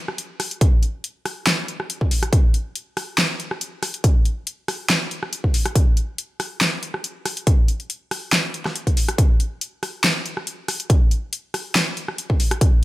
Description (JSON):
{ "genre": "dubstep", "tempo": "140 BPM", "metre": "4/4", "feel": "swing 53% on 16ths, half-time", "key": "none", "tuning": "none", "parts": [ { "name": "dubstep drum kit", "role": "drums", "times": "0.1-12.7 s", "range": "handclaps, hi-hat, rim click, snare drum", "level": "-22 LUFS", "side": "equal", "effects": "none" }, { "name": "electronic kick drum", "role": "drums", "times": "0.6-12.7 s", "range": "none", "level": "-16 LUFS", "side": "equal", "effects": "none" } ], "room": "digital ambience", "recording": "none", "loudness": "-19 LUFS", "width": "side -17 dB against mid", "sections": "0.0-12.8 A section", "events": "none", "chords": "none" }